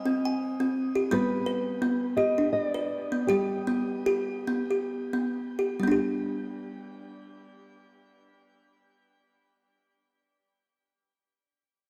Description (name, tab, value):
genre	world meditative, meditative tuned percussion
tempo	64-86 BPM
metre	3/4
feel	swing 55% on 16ths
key	G major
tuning	A4 = 440 Hz
part	nylon-string guitar	melody	0.0-4.9 s	G4 to Eb5	-34 LUFS	equal	shimmer reverb, diffuse ambient delay
part	kalimba	arpeggios	0.0-10.5 s	G3 to Ab5	-29 LUFS	equal	shimmer reverb
room	wet scoring stage reverb, RT60 1.7 s, small room ambience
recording	dark, warm production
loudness	-28 LUFS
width	mono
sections	0.0-5.8 A section; 5.8-11.4 B section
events	slowing down 1.1-5.8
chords	0.0 Ab/G; 1.1 G